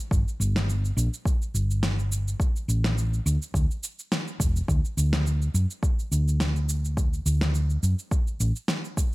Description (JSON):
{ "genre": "sunset chillout", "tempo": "105 BPM", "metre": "4/4", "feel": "swing 54% on 16ths", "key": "unclear", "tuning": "A4 = 442 Hz", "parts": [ { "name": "hollow-body short-scale fingered electric bass", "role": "bass", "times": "0.1-8.5 s", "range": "E1 to F#2", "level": "-23 LUFS", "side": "equal", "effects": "none" }, { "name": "electronic cabasa and snare drum", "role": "drums", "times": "0.1-9.1 s", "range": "none", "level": "-30 LUFS", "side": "equal", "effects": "none" }, { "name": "electronic kick drum", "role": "drums", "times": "0.1-9.1 s", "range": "none", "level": "-24 LUFS", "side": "equal", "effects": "none" } ], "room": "little or no reverb", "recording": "none", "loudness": "-23 LUFS", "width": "side -21 dB against mid", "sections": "0.0-9.1 A section", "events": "none", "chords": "none" }